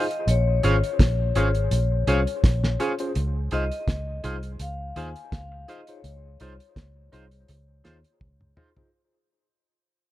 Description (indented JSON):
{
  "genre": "lovers rock reggae",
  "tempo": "83 BPM",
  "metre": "4/4",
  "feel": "swing 54% on 16ths",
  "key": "Db major",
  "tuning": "A4 = 442 Hz",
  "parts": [
    { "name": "vibraphone with medium hard mallets", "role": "melody", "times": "0.0-8.5 s", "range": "Db5 to Ab5", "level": "-31 LUFS", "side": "left 7 dB", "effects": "dub echo" },
    { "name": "tine electric piano", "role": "accompaniment", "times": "0.0-8.9 s", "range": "Db4 to C5", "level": "-31 LUFS", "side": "left 1 dB", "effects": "medium stereo tremolo, dub echo" },
    { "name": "twangy electric guitar", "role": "stabs", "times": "0.0-8.7 s", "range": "Eb4 to F5", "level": "-30 LUFS", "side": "right 3 dB", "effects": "lush chorus" },
    { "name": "cloth-damped thuddy drum kit", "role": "drums", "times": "0.1-8.9 s", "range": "hi-hat, kick drum, snare drum, toms", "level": "-23 LUFS", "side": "equal", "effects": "none" },
    { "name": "vintage muted fingered electric bass", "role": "bass", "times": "0.3-8.5 s", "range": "Ab1 to Eb2", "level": "-24 LUFS", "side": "equal", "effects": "none" }
  ],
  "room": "little or no reverb",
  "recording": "dark, warm production",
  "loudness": "-21 LUFS",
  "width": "side -15 dB against mid",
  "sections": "0.0-8.9 A section",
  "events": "fade-out 0.0-8.9; drum fill 8.2-8.9",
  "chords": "0.3 Bbm7; 3.2 Dbmaj9"
}